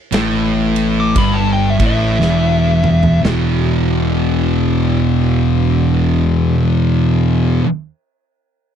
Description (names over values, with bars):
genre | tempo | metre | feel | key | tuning
stoner and doom metal | 58 BPM | 4/4 | swing 62% on 8ths | E minor | A4 = 442 Hz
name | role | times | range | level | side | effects
thick fuzz guitar | riff | 0.1-7.7 s | E2 to E3 | -18 LUFS | left 10 dB | distortion
thick fuzz guitar | riff | 0.1-7.7 s | E2 to E3 | -17 LUFS | right 9 dB | distortion
fuzz picked electric bass | bass | 0.1-7.6 s | E1 to A1 | -18 LUFS | equal | overdrive, tube saturation
big rock drum kit | drums | 0.1-3.5 s | kick drum, ride cymbal, snare drum, toms | -19 LUFS | right 1 dB | none
fuzz lead guitar | melody | 1.0-3.2 s | E5 to D6 | -19 LUFS | left 4 dB | distortion, slapback echo
room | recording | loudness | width
little or no reverb | dry, close 1970s-style studio recording | -12 LUFS | side -8 dB against mid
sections
0.0-3.2 A section; 3.2-7.4 B section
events
lead electric guitar solo 0.0-3.2; drum fill 2.2-3.2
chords
0.0 Em; 3.2 E5